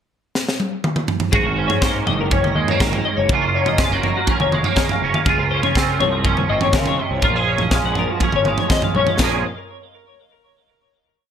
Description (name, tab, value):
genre	math rock and midwest emo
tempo	122 BPM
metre	4/4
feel	straight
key	Bb minor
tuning	A4 = 440 Hz
part	crisp fusion drum kit	drums	0.4-9.3 s	crash cymbal, kick drum, snare drum, toms	-20 LUFS	right 1 dB	gated reverb
part	twangy electric guitar	accompaniment	1.3-9.4 s	F2 to Ab4	-21 LUFS	right 8 dB	ensemble chorus
part	twelve-string electric guitar	arpeggios	1.3-9.4 s	Gb4 to Gb5	-22 LUFS	left 8 dB	analog chorus, ping-pong delay
part	fuzz picked electric bass	bass	1.3-9.4 s	F1 to Db3	-24 LUFS	equal	overdrive
room	moderate plate reverb, RT60 1.2 s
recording	bright 1980s-style digital production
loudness	-16 LUFS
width	side -8 dB against mid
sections	0.0-1.3 pickup bar; 1.3-9.2 A section; 9.2-11.2 final chord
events	drum fill 0.3-1.3, 9.0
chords	0.0 N.C.; 1.3 Ab9sus4; 3.3 Gbmaj7; 5.3 Dbmaj7; 7.2 Bbm7; 9.2 Bb7(no3)